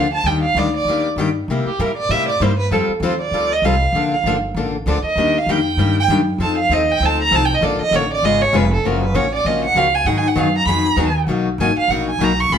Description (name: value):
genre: acoustic string swing (jazz manouche)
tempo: 196 BPM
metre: 4/4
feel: swing 58% on 8ths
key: Bb major, F# major from 8.8 s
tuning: A4 = 440 Hz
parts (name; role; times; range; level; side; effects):
- warm violin; melody; 0.0-12.6 s; G4 to C#6; -18 LUFS; right 3 dB; none
- picked steel-string acoustic guitar; accompaniment; 0.0-12.6 s; B2 to A4; -20 LUFS; left 4 dB; none
- upright bass; bass; 0.0-12.6 s; F1 to C3; -22 LUFS; right 1 dB; none
room: wet studio reverb, RT60 0.8 s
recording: band playing live in one room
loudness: -15 LUFS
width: side -8 dB against mid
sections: 0.0-8.8 A section; 8.8-12.6 A section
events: violin solo 0.0-12.6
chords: 0.3 Ebmaj7; 1.5 C7; 2.7 Fadd9; 3.9 Bbmaj7; 5.2 Ebmaj7; 6.4 F7; 7.6 Bbmaj7; 8.2 Db7; 8.8 F#maj7; 10.1 G#m7; 11.3 Bmaj7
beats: | 0.25 0.56 0.87 1.17 | 1.48 1.79 2.10 2.40 | 2.71 3.02 3.33 3.63 | 3.94 4.25 4.55 4.86 | 5.17 5.47 5.78 6.08 | 6.39 6.70 7.00 7.31 | 7.62 7.92 8.23 8.53 | 8.84 9.14 9.45 9.76 | 10.06 10.37 10.68 10.98 | 11.29 11.60 11.90 12.21 | 12.51